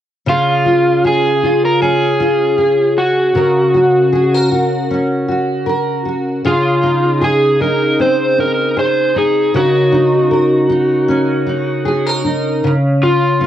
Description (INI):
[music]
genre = acoustic pop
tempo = 78 BPM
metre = 4/4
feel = swing 55% on 16ths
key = Db major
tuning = A4 = 439 Hz
[part]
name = overdriven slide guitar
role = melody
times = 0.3-13.5 s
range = F4 to C5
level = -14 LUFS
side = equal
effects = tape echo
[part]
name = fingerpicked steel-string acoustic guitar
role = accompaniment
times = 0.3-13.5 s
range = Db3 to Bb4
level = -14 LUFS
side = equal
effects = double-tracked left and right
[sound]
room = moderate studio reverb, RT60 0.7 s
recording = worn, warbling old tape, cassette tape, warbly pitch drift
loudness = -12 LUFS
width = side -11 dB against mid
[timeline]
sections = 0.3-12.6 A section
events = none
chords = 0.3 Db; 3.4 Gb/Db; 6.5 Ab/Db; 9.5 Ebm/Db; 12.6 Db